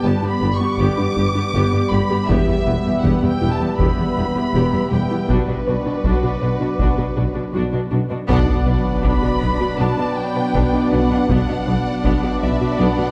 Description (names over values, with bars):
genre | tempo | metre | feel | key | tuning
cinematic, hybrid orchestral and electronic film score | 80 BPM | 4/4 | straight | B minor | A4 = 440 Hz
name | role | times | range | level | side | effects
warm symphonic violin section | melody | 0.0-13.1 s | B4 to D6 | -29 LUFS | equal | none
clear symphonic viola section | accompaniment | 0.0-13.1 s | B3 to G4 | -30 LUFS | equal | none
lush unison pad | sustained chords | 0.0-13.1 s | F#3 to E5 | -28 LUFS | equal | chorus
mellow French horn section | sustained chords | 0.0-13.1 s | F#3 to D4 | -29 LUFS | equal | none
warbly dusty pluck | arpeggios | 0.0-13.1 s | E3 to B4 | -30 LUFS | equal | none
clear symphonic double bass section | bass | 0.0-12.9 s | E1 to B1 | -27 LUFS | equal | none
dark tuba | bass | 0.0-12.9 s | E1 to B1 | -27 LUFS | equal | none
rich symphonic cello section | bass | 0.0-13.1 s | E2 to B2 | -28 LUFS | equal | none
taiko ensemble | drums | 2.3-12.8 s | none | -26 LUFS | equal | none
warm symphonic violin section | second line | 8.3-13.1 s | D4 to D5 | -32 LUFS | equal | none
warm trombone section | sustained chords | 8.3-13.1 s | B2 to B3 | -29 LUFS | equal | none
sub drop | sound effects | 8.5-11.3 s | none | -28 LUFS | equal | none
room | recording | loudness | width
wet concert hall reverb, RT60 2.1 s | dark, warm production | -19 LUFS | mono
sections
0.0-8.3 A section; 8.3-13.1 B section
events
band accent 8.3-9.0; impact 8.3-11.3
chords
0.0 G; 2.3 Em; 5.3 Bm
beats
0.04 0.79 1.54 | 2.29 3.04 3.79 4.54 | 5.29 6.04 6.79 7.54 | 8.29 9.04 9.79 10.54 | 11.29 12.04 12.79